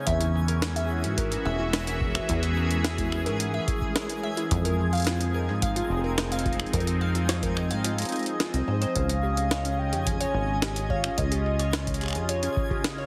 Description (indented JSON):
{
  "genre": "IDM",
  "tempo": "108 BPM",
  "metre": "4/4",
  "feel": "straight",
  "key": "unclear",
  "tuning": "A4 = 440 Hz",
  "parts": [
    { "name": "phased analog pad", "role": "sustained chords", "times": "0.0-13.1 s", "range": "Db3 to E5", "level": "-34 LUFS", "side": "equal", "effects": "phaser, chorus, sidechain pumping" },
    { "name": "twinkling granular texture", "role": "texture", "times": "0.0-13.1 s", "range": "Ab3 to Ab5", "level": "-41 LUFS", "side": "equal", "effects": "built-in reverb" },
    { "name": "harp-like synth pluck", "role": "arpeggios", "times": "0.1-13.1 s", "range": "C4 to F5", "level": "-35 LUFS", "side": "equal", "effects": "chorus, tape echo" },
    { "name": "deep acid bass", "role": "bass", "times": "0.1-12.5 s", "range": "E1 to G#2", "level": "-30 LUFS", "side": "equal", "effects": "none" },
    { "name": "electronic kick drum", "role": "drums", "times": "0.1-12.8 s", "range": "none", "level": "-34 LUFS", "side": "equal", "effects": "none" },
    { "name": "jungle sampler-style drum kit", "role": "drums", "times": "0.1-13.0 s", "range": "finger snaps, hi-hat, snare drum", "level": "-33 LUFS", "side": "equal", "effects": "none" },
    { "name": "warm velvety synth lead", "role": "melody", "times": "9.0-12.2 s", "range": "Eb5 to Ab5", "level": "-35 LUFS", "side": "equal", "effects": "chorus, cassette tape, delay" }
  ],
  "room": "light reverb, digital ambience",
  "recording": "heavily compressed radio sound, multiband compression",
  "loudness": "-27 LUFS",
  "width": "mono",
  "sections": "0.0-13.1 A section",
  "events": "none",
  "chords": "0.1 E6; 4.5 Fm7; 9.0 Dbadd9",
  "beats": "| 0.07 0.62 1.18 1.73 | 2.29 2.84 3.40 3.96 | 4.51 5.07 5.62 6.18 | 6.73 7.29 7.84 8.40 | 8.96 9.51 10.07 10.62 | 11.18 11.73 12.29 12.84"
}